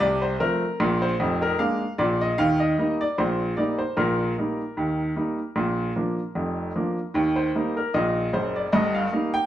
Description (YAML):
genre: ragtime piano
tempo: 76 BPM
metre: 2/4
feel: swing 55% on 16ths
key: Eb major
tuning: A4 = 441 Hz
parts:
  - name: bright upright piano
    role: solo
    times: 0.0-9.5 s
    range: F1 to G5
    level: -22 LUFS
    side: equal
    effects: none
room: wet large studio reverb, RT60 0.9 s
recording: band playing live in one room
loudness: -22 LUFS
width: side -12 dB against mid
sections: 0.0-9.5 A section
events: none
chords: 0.0 F; 0.8 Bb7; 2.4 Eb/Bb; 5.6 Bb; 7.2 Eb; 8.7 Eb/G